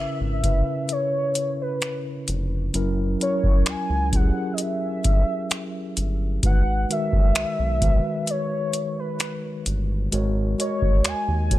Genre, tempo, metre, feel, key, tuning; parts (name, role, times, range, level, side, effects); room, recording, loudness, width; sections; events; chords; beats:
contemporary R&B; 65 BPM; 4/4; straight; C# dorian; A4 = 441 Hz
warm velvety synth lead; melody; 0.0-11.6 s; B4 to G#5; -27 LUFS; equal; chorus
mellow tine electric piano; accompaniment; 0.0-11.6 s; C#3 to D#5; -28 LUFS; equal; medium stereo tremolo
round analog bass; bass; 0.0-11.6 s; E#1 to D#2; -25 LUFS; equal
booming analog drum machine; drums; 0.4-11.6 s; finger snaps, hi-hat, kick drum; -21 LUFS; equal
digital ambience; dry, gritty hardware recording; -21 LUFS; side -15 dB against mid
0.0-11.6 A section
0.0 C#m7; 2.7 F#7; 6.4 Emaj9; 10.1 G#9sus4
0.89 1.82 | 2.74 3.66 4.59 5.51 | 6.43 7.36 8.28 9.20 | 10.12 11.05